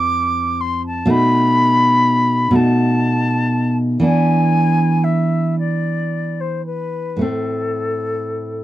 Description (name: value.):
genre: romantic duo for flute and classical guitar.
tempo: 35-42 BPM (dotted quarters).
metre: 6/8.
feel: rubato.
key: unclear.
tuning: A4 = 438 Hz.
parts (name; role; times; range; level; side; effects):
concert flute; melody; 0.0-8.6 s; A4 to D6; -19 LUFS; left 1 dB; none.
nylon-string guitar; accompaniment; 0.0-8.6 s; F2 to D#4; -17 LUFS; right 1 dB; none.
room: little or no reverb.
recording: dry, close 1970s-style studio recording.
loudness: -15 LUFS.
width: side -14 dB against mid.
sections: 0.0-8.6 A section.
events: none.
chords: 0.0 F; 1.1 B7; 4.0 E7; 7.2 Am.